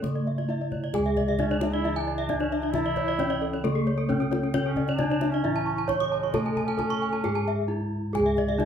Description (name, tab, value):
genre	Balinese gamelan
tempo	133 BPM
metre	4/4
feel	straight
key	C# pelog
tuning	A4 = 439 Hz
part	gamelan-type bronze metallophone	melody	0.0-8.7 s	A3 to C#5	-29 LUFS	equal	none
part	gamelan-type bronze metallophone	accompaniment	0.0-8.7 s	C#3 to A3	-32 LUFS	left 1 dB	none
part	gamelan-type bronze metallophone	arpeggios	0.0-8.7 s	A4 to C#6	-32 LUFS	left 5 dB	none
part	gamelan-type bronze metallophone	arpeggios	0.0-8.6 s	G#4 to D6+35c	-33 LUFS	right 7 dB	none
part	gamelan-type bossed gongs	bass	0.0-8.7 s	C#2 to A4	-30 LUFS	right 1 dB	none
part	kendang	percussion	0.0-8.7 s	none	-35 LUFS	left 4 dB	none
part	mellow flugelhorn	second line	1.4-7.9 s	G#3 to E4	-34 LUFS	right 4 dB	none
room	moderate large studio reverb, RT60 0.8 s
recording	band playing live in one room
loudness	-24 LUFS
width	side -8 dB against mid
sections	0.9-8.7 A section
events	break 7.5-8.1; drum fill 7.8-8.1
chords	none